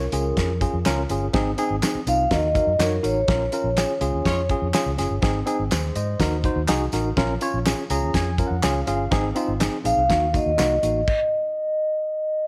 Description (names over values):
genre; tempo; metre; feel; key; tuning
uptempo 1960s-style soul; 123 BPM; 4/4; straight; Ab mixolydian; A4 = 436 Hz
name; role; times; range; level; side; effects
vibraphone with soft mallets; melody; 0.0-4.5, 9.9-12.5 s; Bb4 to F5; -25 LUFS; equal; tape echo
tine electric piano; accompaniment; 0.0-11.0 s; Bb3 to Bb5; -28 LUFS; equal; none
vintage muted fingered electric bass; bass; 0.0-11.0 s; Gb1 to Ab2; -28 LUFS; equal; none
warm soul drum kit; drums; 0.1-11.2 s; crash cymbal, hi-hat, kick drum, snare drum; -28 LUFS; equal; none
tambourine and handclaps; percussion; 0.1-10.9 s; none; -36 LUFS; equal; none
warm horn section; second line; 4.3-4.4 s; Ab3 to Db5; -35 LUFS; equal; none
room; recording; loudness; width
light reverb, studio reverb; none; -22 LUFS; mono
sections
0.0-12.5 A section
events
band accent 3.3-5.2; tine electric piano fill 7.7-9.1; stop 11.1-12.5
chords
0.1 Db; 1.3 Ab; 2.3 Ebm; 3.3 Bbm; 4.0 Db; 5.2 Ab; 6.2 Ebm; 7.2 Bbm; 7.9 Db; 9.1 Ab; 10.1 Ebm; 11.1 N.C.